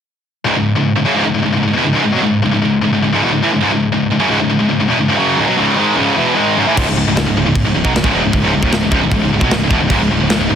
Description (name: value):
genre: heavy metal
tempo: 153 BPM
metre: 4/4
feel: straight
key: C# minor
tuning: A4 = 442 Hz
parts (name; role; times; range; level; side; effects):
- heavy high-gain guitar; riff; 0.4-10.6 s; C#2 to G#3; -15 LUFS; left 6 dB; distortion
- high-gain distorted guitar; riff; 0.5-10.6 s; C#2 to G#3; -17 LUFS; right 10 dB; distortion
- tight distorted guitar; riff; 6.8-10.6 s; C#2 to F#3; -21 LUFS; right 2 dB; none
- fuzz picked electric bass; bass; 6.8-10.6 s; C#1 to B1; -20 LUFS; equal; overdrive
- tight metal drum kit; drums; 6.8-10.4 s; crash cymbal, kick drum, snare drum; -18 LUFS; right 1 dB; none
room: studio reverb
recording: dense, heavily limited modern master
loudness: -12 LUFS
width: side -8 dB against mid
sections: 0.5-6.8 A section; 6.8-10.6 B section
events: none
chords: 0.5 C#m